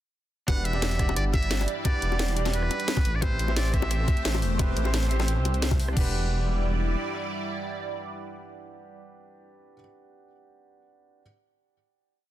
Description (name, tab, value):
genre	liquid drum and bass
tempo	175 BPM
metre	4/4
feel	straight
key	E minor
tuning	A4 = 440 Hz
part	trumpet with metal mute	melody	0.5-4.4 s	B4 to F#5	-32 LUFS	equal	ping-pong delay
part	bright grand piano	accompaniment	0.5-11.2 s	C4 to D5	-36 LUFS	right 2 dB	tape echo
part	lush unison pad	sustained chords	1.0-9.5 s	G3 to D5	-34 LUFS	right 1 dB	chorus, phaser, sidechain pumping
part	dark detuned saw bass	bass	0.5-7.0 s	E1 to C2	-26 LUFS	equal	none
part	drum and bass drum kit	drums	0.5-6.0 s	crash cymbal, hi-hat, rim click, snare drum	-31 LUFS	left 1 dB	none
part	electronic kick drum	drums	0.5-6.0 s	none	-24 LUFS	equal	none
part	bongos	percussion	0.5-5.8 s	none	-35 LUFS	left 10 dB	none
room	little or no reverb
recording	dense, heavily limited modern master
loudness	-24 LUFS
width	side -13 dB against mid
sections	0.5-6.0 drop; 6.0-8.7 final chord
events	drop 0.5-6.0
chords	0.5 Em7; 3.1 Am7; 6.0 Em7